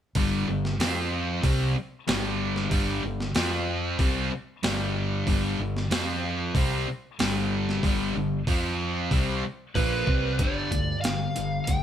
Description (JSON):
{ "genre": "hard rock", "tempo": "94 BPM", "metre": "4/4", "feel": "straight", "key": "unclear", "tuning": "A4 = 440 Hz", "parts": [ { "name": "hollow-body short-scale fingered electric bass", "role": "bass", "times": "0.1-11.8 s", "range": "G1 to F2", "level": "-31 LUFS", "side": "equal", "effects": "none" }, { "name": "sludgy distorted guitar", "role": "riff", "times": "0.2-11.8 s", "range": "G2 to F4", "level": "-31 LUFS", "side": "left 6 dB", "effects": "overdrive" }, { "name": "sludgy distorted guitar", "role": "riff", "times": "0.2-11.8 s", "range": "G2 to F4", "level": "-30 LUFS", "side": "right 4 dB", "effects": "overdrive" }, { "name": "boom bap sampler-style drum kit", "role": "drums", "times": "0.2-11.8 s", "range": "hi-hat, kick drum, snare drum", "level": "-27 LUFS", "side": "equal", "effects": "none" }, { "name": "lead guitar through a small cranked amp", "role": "melody", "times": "9.8-11.8 s", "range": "B4 to G5", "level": "-30 LUFS", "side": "right 1 dB", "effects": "overdrive" } ], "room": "light reverb", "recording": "band playing live in one room", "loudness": "-24 LUFS", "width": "side -10 dB against mid", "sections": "0.2-10.4 A section; 10.4-11.8 B section", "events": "kick and snare drop out 7.8-10.4", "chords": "0.2 G5; 0.8 F5; 1.4 G5; 3.4 F5; 4.0 G5; 5.9 F5; 6.6 G5; 8.5 F5; 9.1 G; 10.4 G5" }